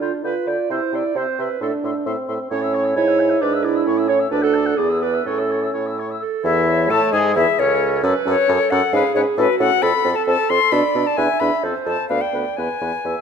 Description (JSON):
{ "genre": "quick classical-period movement for wind quintet", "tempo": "132 BPM", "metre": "2/4", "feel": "rubato", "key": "A major", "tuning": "A4 = 440 Hz", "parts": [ { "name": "bright concert flute", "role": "melody", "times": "0.0-13.2 s", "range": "B4 to F#6", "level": "-21 LUFS", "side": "left 8 dB", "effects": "none" }, { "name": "mellow oboe", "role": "second line", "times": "0.0-13.2 s", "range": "C#4 to A5", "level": "-27 LUFS", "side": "left 4 dB", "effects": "none" }, { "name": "dark clarinet", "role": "accompaniment", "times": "0.0-13.2 s", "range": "E4 to E5", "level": "-22 LUFS", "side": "right 6 dB", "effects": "none" }, { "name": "warm French horn", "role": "accompaniment", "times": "0.0-13.2 s", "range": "C#3 to F4", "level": "-24 LUFS", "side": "equal", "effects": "none" }, { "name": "warm bassoon", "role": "bass", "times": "0.0-13.2 s", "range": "C#2 to D3", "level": "-24 LUFS", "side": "right 3 dB", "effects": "none" } ], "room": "moderate scoring stage reverb, RT60 1.9 s", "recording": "none", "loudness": "-16 LUFS", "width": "side -7 dB against mid", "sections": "0.0-6.2 A section; 6.2-13.2 B section", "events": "none", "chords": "0.0 G7/D; 0.7 C; 1.6 Am; 2.5 A; 3.0 E/G#; 3.4 E7/G#; 3.9 A; 4.3 D; 4.8 E7; 5.3 A; 7.1 E/G#; 7.6 A/C#; 8.0 F#m; 8.9 C#7/G#; 9.4 F#m/A; 9.8 F; 10.7 Bm7; 11.2 E7; 11.6 F; 12.1 G7/D; 12.6 E" }